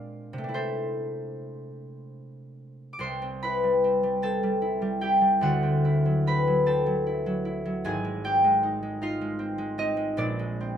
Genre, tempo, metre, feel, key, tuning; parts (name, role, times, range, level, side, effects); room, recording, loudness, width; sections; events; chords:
classical, solo harp piece; 50 BPM (dotted quarters); 6/8; uneven beats, rubato; C major; A4 = 440 Hz
concert harp; solo; 0.0-10.8 s; Ab1 to D6; -24 LUFS; equal
light reverb; close, detailed microphones; -23 LUFS; side -9 dB against mid
0.0-3.0 A section; 3.0-10.8 B section
0.0 Bb9; 0.5 C69; 3.0 Cmaj7; 5.4 D9; 7.8 Abmaj7; 10.2 Bb9